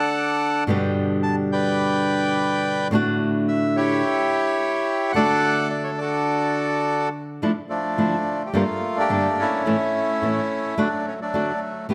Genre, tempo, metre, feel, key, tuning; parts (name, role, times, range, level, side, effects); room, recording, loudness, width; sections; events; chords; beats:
tango; 107 BPM; 4/4; rubato; D major, D harmonic minor from 7.4 s; A4 = 439 Hz
bandoneon; melody; 0.0-11.9 s; F3 to A5; -24 LUFS; equal
flamenco guitar; accompaniment; 0.0-11.9 s; G2 to A4; -26 LUFS; equal
moderate concert hall reverb, RT60 2.0 s; -22 LUFS; mono
0.0-7.4 A section; 7.4-11.9 B section
0.0 D; 0.7 G; 2.9 D/A; 4.0 Em6; 5.1 D; 7.4 Dmadd9; 8.5 Gmadd9; 9.7 A; 10.8 D
0.10 | 0.66 1.23 1.79 2.35 | 2.91 3.47 4.03 4.59 | 5.15 5.71 6.27 6.84 | 7.40 7.97 8.53 9.09 | 9.65 10.22 10.78 11.34 | 11.90